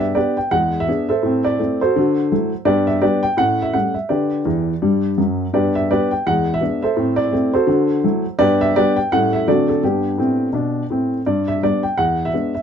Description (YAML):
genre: jazz, stride piano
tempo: 168 BPM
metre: 4/4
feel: swing 60% on 8ths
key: G major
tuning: A4 = 440 Hz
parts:
  - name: warm upright piano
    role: solo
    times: 0.0-12.6 s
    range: E2 to G5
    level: -16 LUFS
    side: equal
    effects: none
room: moderate booth ambience, RT60 0.2 s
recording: dark, warm production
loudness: -16 LUFS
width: side -8 dB against mid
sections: 0.0-11.3 A section; 11.3-12.6 A section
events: upright piano fill 4.5-5.5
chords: 0.0 G; 0.5 E7; 1.2 Am; 1.9 D9; 2.7 G; 3.4 A7; 4.1 G/D; 4.8 D; 5.5 G; 6.2 E7; 7.0 Am; 7.7 D9; 8.4 G; 9.1 A7; 9.5 D7; 9.8 G; 12.0 E7